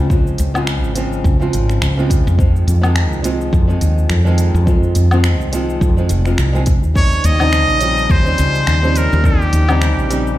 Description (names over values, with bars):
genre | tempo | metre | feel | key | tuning
sunset chillout | 105 BPM | 4/4 | swing 56% on 16ths | unclear | A4 = 440 Hz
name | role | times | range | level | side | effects
nylon-string guitar | accompaniment | 0.0-10.4 s | Db3 to Ab4 | -20 LUFS | equal | auto-pan, ping-pong delay
woody fretless electric bass | bass | 0.0-10.3 s | F1 to F2 | -15 LUFS | equal | none
deep house drum kit | drums | 0.1-10.4 s | finger snaps, hi-hat, shaker, woodblock | -25 LUFS | equal | none
electronic kick drum | drums | 0.1-9.4 s | none | -14 LUFS | equal | none
trumpet with straight mute | melody | 7.0-10.4 s | G4 to Eb5 | -17 LUFS | equal | ping-pong delay
room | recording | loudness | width
little or no reverb | played on a big sound system in a bare room, large studio reverb | -12 LUFS | side -14 dB against mid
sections
0.0-10.4 A section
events
none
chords
0.0 Dbmaj7; 2.4 Fm7; 7.0 Eb13